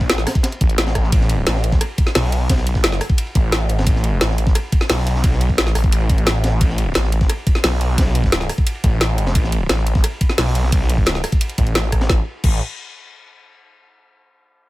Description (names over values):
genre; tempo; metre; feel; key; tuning
dark technical drum and bass; 175 BPM; 4/4; straight; unclear; A4 = 440 Hz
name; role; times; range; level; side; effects
snarling distorted saw bass; bass; 0.0-12.6 s; A1 to B1; -18 LUFS; equal; distortion, overdrive, sidechain pumping
electronic kick drum; drums; 0.0-12.5 s; none; -17 LUFS; equal; none
crunchy breakbeat drum kit; drums; 0.1-12.1 s; hi-hat, ride cymbal, snare drum; -29 LUFS; equal; high-pass filter on cymbals, high-pass filter on hats, high-pass filter on snare, high-pass filter on room
drum and bass drum kit; drums; 0.1-12.5 s; crash cymbal, hi-hat, ride cymbal, rim click, snare drum; -21 LUFS; equal; none
room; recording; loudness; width
little or no reverb; none; -15 LUFS; side -18 dB against mid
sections
0.0-12.1 A section; 12.1-13.5 B section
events
drop 0.0-12.1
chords
none